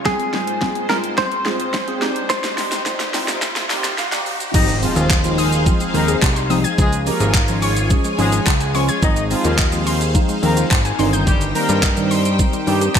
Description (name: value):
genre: dance-pop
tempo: 107 BPM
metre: 4/4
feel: straight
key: Ab major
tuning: A4 = 439 Hz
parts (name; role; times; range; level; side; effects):
- lush unison pad; sustained chords; 0.0-13.0 s; G2 to Ab5; -25 LUFS; left 1 dB; chorus, phaser, sidechain pumping
- riser and impact; sound effects; 0.0-6.8 s; none; -30 LUFS; equal; none
- direct-recorded clean electric guitar; melody; 0.1-4.2 s; Ab4 to C5; -23 LUFS; right 1 dB; analog chorus, digital delay
- glassy digital keys; accompaniment; 0.1-13.0 s; Eb3 to C6; -24 LUFS; right 1 dB; chorus, sidechain pumping
- pop drum kit; drums; 0.1-13.0 s; crash cymbal, handclaps, hi-hat, kick drum, shaker, snare drum; -19 LUFS; equal; overdrive, gated reverb
- mellow horn section; melody; 4.5-12.9 s; F3 to Eb5; -25 LUFS; left 1 dB; digital delay
- hollow square pluck; arpeggios; 4.5-12.9 s; Eb3 to Ab6; -26 LUFS; left 5 dB; chorus, sidechain pumping, digital delay
- fat analog bass; bass; 4.5-13.0 s; G1 to G2; -20 LUFS; equal; sidechain pumping
room: moderate lush hall reverb, RT60 1.6 s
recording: bright 1980s-style digital production, high-pass filter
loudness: -15 LUFS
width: side -8 dB against mid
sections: 0.0-4.5 A section; 4.5-13.0 B section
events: build-up 0.0-4.5; drum fill 0.0-4.5; riser 0.0-4.5; filter sweep 0.0-4.5; synth keys fill 3.4-4.5; drop 4.5-13.0; impact 4.5-6.8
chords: 0.1 Ab6; 2.0 Cm/G; 4.5 Ab6; 6.8 Db; 9.0 Ab6; 11.0 Cm/G